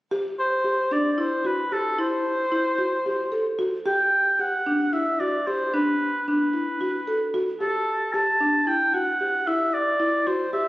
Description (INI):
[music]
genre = contemporary instrumental, contemporary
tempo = 225 BPM (eighths)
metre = 7/8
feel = straight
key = A dorian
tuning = A4 = 440 Hz
[part]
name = buzzing marimba with medium mallets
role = arpeggios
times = 0.1-10.7 s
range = D4 to A4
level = -25 LUFS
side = left 1 dB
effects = none
[part]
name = mellow oboe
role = melody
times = 0.4-10.7 s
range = A4 to A5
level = -23 LUFS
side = equal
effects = none
[sound]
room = moderate concert hall reverb, RT60 1.9 s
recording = recorded on a phone in the room, club reverb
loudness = -21 LUFS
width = side -17 dB against mid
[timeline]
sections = 0.1-10.7 A section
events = none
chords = 0.1 Am7 (rootless); 3.9 G5; 5.7 Bm7; 7.6 A5